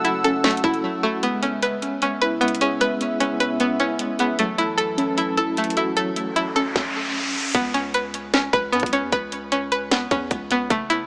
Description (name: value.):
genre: hip hop, trap.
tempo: 152 BPM.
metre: 4/4.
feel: half-time.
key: C# minor.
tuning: A4 = 440 Hz.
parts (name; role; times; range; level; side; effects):
muted felt-like synth keys; accompaniment; 0.0-7.5 s; F#3 to G#4; -28 LUFS; equal; chorus, tremolo.
warm analog pad; sustained chords; 0.0-6.7 s; F#2 to E6; -31 LUFS; equal; chorus.
string-like resonator pluck; arpeggios; 0.0-11.1 s; A3 to B4; -24 LUFS; equal; chorus, digital delay.
long sustained 808-style bass; bass; 0.0-0.8, 7.5-11.1 s; F#1 to G#2; -38 LUFS; equal; none.
trap drum kit; drums; 0.0-11.0 s; hi-hat, kick drum, snare drum; -27 LUFS; equal; none.
riser; sound effects; 6.2-7.5 s; none; -31 LUFS; equal; none.
room: light reverb.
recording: small speaker sound.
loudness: -22 LUFS.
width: mono.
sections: 0.0-1.2 A section; 1.2-7.5 B section; 7.5-11.1 C section.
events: break 0.8-1.2; riser 6.2-7.5.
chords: 0.0 F#m7; 1.2 C#m7; 4.4 F#m7; 7.5 C#7(no3).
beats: 0.05 0.44 0.84 | 1.23 1.62 2.02 2.42 | 2.81 3.20 3.60 3.99 | 4.39 4.78 5.18 5.57 | 5.97 6.36 6.76 7.15 | 7.55 7.94 8.34 8.73 | 9.12 9.52 9.91 10.31 | 10.70.